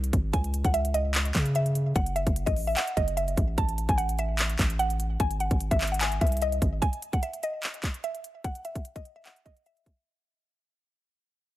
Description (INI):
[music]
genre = hip hop, trap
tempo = 148 BPM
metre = 4/4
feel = half-time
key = unclear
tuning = A4 = 440 Hz
[part]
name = long sustained 808-style bass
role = bass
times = 0.0-6.8 s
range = F#1 to C#3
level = -28 LUFS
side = equal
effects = none
[part]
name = trap drum kit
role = drums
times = 0.0-10.0 s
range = handclaps, hi-hat, kick drum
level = -27 LUFS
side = equal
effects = none
[part]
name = mallet-like synth pluck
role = melody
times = 0.3-10.0 s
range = D#5 to A5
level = -30 LUFS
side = equal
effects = chorus, phaser, tape echo
[sound]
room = digital ambience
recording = none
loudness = -25 LUFS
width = side -15 dB against mid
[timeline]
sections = 0.0-6.8 A section; 6.8-10.1 B section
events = break 0.0-0.3; fade-out 6.8-10.1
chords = 0.3 C#sus2; 2.0 F#m7; 3.6 A5; 5.2 G#; 6.8 N.C.